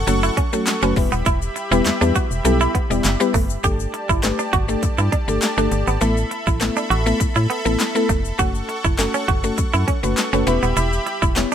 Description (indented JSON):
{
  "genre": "dance-pop",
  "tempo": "101 BPM",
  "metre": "4/4",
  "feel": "straight",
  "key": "unclear",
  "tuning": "A4 = 445 Hz",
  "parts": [
    { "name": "soft supersaw", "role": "sustained chords", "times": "0.0-11.5 s", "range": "G4 to C#6", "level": "-26 LUFS", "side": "equal", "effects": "sidechain pumping" },
    { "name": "organ-like FM bass", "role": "bass", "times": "0.0-11.5 s", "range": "D#1 to A2", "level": "-22 LUFS", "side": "equal", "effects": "sidechain pumping" },
    { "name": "mallet-like synth pluck", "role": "accompaniment", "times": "0.1-11.5 s", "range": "F#3 to D5", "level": "-22 LUFS", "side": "left 2 dB", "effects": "chorus, sidechain pumping" },
    { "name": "direct-recorded clean electric guitar", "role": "riff", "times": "0.1-11.5 s", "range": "A3 to G4", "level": "-23 LUFS", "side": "right 5 dB", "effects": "lush chorus" },
    { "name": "house drum kit", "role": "drums", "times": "0.1-11.5 s", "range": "handclaps, hi-hat, kick drum, snare drum", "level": "-22 LUFS", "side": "equal", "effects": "none" },
    { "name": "tube shaker", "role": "percussion", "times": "0.1-11.5 s", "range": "none", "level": "-33 LUFS", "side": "left 10 dB", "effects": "none" }
  ],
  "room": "light reverb",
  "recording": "none",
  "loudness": "-17 LUFS",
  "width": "side -9 dB against mid",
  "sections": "0.0-3.6 A section; 3.6-11.5 B section",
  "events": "none",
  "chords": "0.0 F#m; 1.0 Em; 3.6 Gsus2; 6.0 Asus2; 8.4 F#m; 10.5 Em",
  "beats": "0.07 0.67 | 1.26 1.86 2.45 3.04 | 3.64 4.23 4.83 5.42 | 6.02 6.61 7.20 7.80 | 8.39 8.99 9.58 10.17 | 10.77 11.36"
}